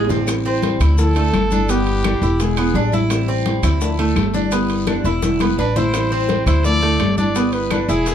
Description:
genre	latin, Cuban son and guajira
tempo	170 BPM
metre	4/4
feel	straight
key	A minor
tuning	A4 = 441 Hz
part	nylon-string guitar	accompaniment	0.0-8.1 s	B2 to E4	-22 LUFS	equal	none
part	Cuban tres	arpeggios	0.0-8.1 s	A3 to E4	-22 LUFS	right 2 dB	none
part	upright bass	bass	0.0-8.1 s	E1 to D2	-20 LUFS	equal	none
part	timbales	percussion	0.0-8.1 s	none	-30 LUFS	right 7 dB	none
part	bongos	percussion	0.1-8.1 s	none	-30 LUFS	left 6 dB	none
part	congas	percussion	0.1-8.1 s	none	-25 LUFS	left 5 dB	none
part	guiro	percussion	0.1-8.1 s	none	-37 LUFS	left 5 dB	none
part	maracas	percussion	0.1-8.1 s	none	-35 LUFS	left 5 dB	none
part	claves	percussion	0.3-7.9 s	none	-33 LUFS	left 5 dB	none
part	warm trumpet	melody	0.5-2.9, 5.6-8.1 s	G4 to D5	-22 LUFS	equal	none
room	light reverb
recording	dark, warm production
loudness	-15 LUFS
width	side -9 dB against mid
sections	0.3-8.1 A section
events	drum fill 0.0, 5.1-5.9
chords	0.3 Am7; 1.0 Dmadd9; 1.7 G6; 2.4 E7; 3.1 Am7; 3.8 Dmadd9; 4.5 G6; 5.2 E7; 5.9 Am7; 6.6 Dmadd9; 7.4 G6

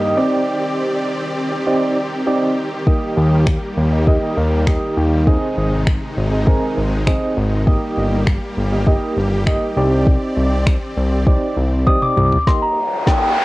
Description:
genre	dance-pop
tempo	100 BPM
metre	4/4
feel	straight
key	Eb major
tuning	A4 = 442 Hz
part	soft electric-piano-like synth keys	accompaniment	0.0-13.4 s	G2 to Eb5	-20 LUFS	right 1 dB	chorus, tremolo, sidechain pumping, cassette tape
part	supersaw chords	sustained chords	0.0-12.4 s	G2 to D5	-24 LUFS	equal	sidechain pumping, cassette tape
part	smooth R&B drum kit	drums	2.9-13.2 s	finger snaps, kick drum, snare drum, toms	-16 LUFS	equal	cassette tape
part	fat analog bass	bass	3.2-12.4 s	G1 to Eb2	-17 LUFS	equal	sidechain pumping
part	celesta	melody	11.9-13.4 s	G5 to Eb6	-17 LUFS	left 1 dB	tape echo
part	riser	sound effects	12.7-13.4 s	none	-21 LUFS	left 2 dB	none
room	moderate studio reverb, RT60 0.6 s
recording	home recording on cassette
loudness	-15 LUFS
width	side -19 dB against mid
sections	0.0-12.5 A section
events	drum fill 11.9-12.5, 12.5-13.4; riser 12.7-13.4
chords	0.2 Cmadd9; 2.9 Eb; 5.3 Ab; 7.7 Eb/G; 9.8 Cmadd9; 12.5 Eb

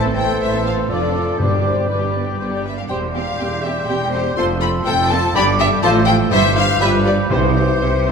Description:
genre	quick classical-period movement for symphony orchestra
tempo	122 BPM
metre	3/4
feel	straight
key	C major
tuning	A4 = 440 Hz
part	warm studio violin section	melody	0.0-8.1 s	F4 to C5	-30 LUFS	left 5 dB	none
part	flute section	second line	0.0-8.1 s	B5 to D6	-28 LUFS	equal	none
part	warm oboe	second line	0.0-8.1 s	G4 to A4	-27 LUFS	right 1 dB	none
part	dark bassoon	accompaniment	0.0-8.1 s	D3 to G3	-26 LUFS	right 1 dB	none
part	rich chamber viola section	accompaniment	0.0-8.1 s	F3 to G4	-27 LUFS	equal	none
part	warm French horn section	sustained chords	0.0-7.5 s	E3 to A4	-26 LUFS	left 5 dB	none
part	warm trumpet section	stabs	0.0-7.5 s	B4 to D5	-25 LUFS	right 1 dB	none
part	rich chamber double bass section	bass	0.0-8.1 s	E1 to C2	-23 LUFS	right 2 dB	none
part	rich symphonic cello section	bass	0.0-8.1 s	E2 to C3	-23 LUFS	right 3 dB	none
part	dark studio violin section	second line	0.2-8.1 s	A4 to C6	-21 LUFS	left 4 dB	none
part	timpani	percussion	1.4-2.1, 7.3-8.0 s	G2 to C3	-22 LUFS	left 1 dB	none
room	wet scoring stage reverb, RT60 2.1 s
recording	minimal, uncompressed stereo recording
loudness	-15 LUFS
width	side -6 dB against mid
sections	0.0-8.1 A section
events	none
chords	0.0 Am; 0.9 Dm/F; 1.4 G; 2.9 C/E; 4.4 F; 5.4 G5; 5.8 F/A; 6.3 C/G; 6.8 G7; 7.3 C

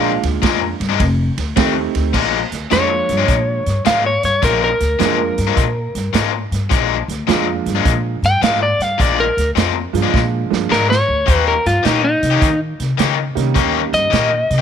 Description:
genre	electric blues shuffle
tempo	105 BPM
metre	4/4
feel	swing 66% on 8ths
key	Bb mixolydian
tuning	A4 = 441 Hz
part	clear upright piano	accompaniment	0.0-14.1 s	Eb3 to F5	-22 LUFS	right 12 dB	none
part	overdriven electric guitar	riff	0.0-14.6 s	F2 to G4	-20 LUFS	left 14 dB	none
part	upright bass	bass	0.0-14.6 s	F1 to Eb3	-20 LUFS	equal	none
part	vintage drum kit	drums	0.2-14.6 s	crash cymbal, hi-hat, kick drum, ride cymbal, snare drum	-21 LUFS	right 4 dB	none
part	electric guitar at the edge of break-up	melody	2.7-14.6 s	Eb4 to G5	-17 LUFS	left 1 dB	none
room	light reverb, small room ambience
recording	1960s-style stereo with parts hard left and right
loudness	-14 LUFS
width	side -8 dB against mid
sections	0.0-2.1 A section; 2.1-14.6 B section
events	drum fill 10.1-11.3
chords	0.0 Bb7; 1.0 F7; 2.1 Bb7; 11.3 Eb7

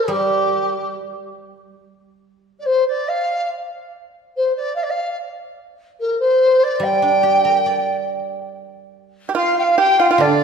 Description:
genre	chinese traditional, Chinese chamber ensemble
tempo	71 BPM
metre	2/4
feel	rubato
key	G yu mode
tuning	A4 = 437 Hz
part	mellow large dizi	melody	0.0-10.4 s	G4 to G5	-17 LUFS	left 1 dB	none
part	guzheng	accompaniment	0.1-2.6, 6.8-10.4 s	D3 to D5	-21 LUFS	right 6 dB	none
part	pipa	second line	9.3-10.4 s	D4 to G4	-17 LUFS	right 5 dB	none
part	reedy large dizi	second line	9.4-10.4 s	D5 to G5	-19 LUFS	left 4 dB	none
room	wet concert hall reverb, RT60 2.1 s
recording	minimal, uncompressed stereo recording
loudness	-15 LUFS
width	side -6 dB against mid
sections	0.0-8.5 A section; 8.5-10.4 B section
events	none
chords	none

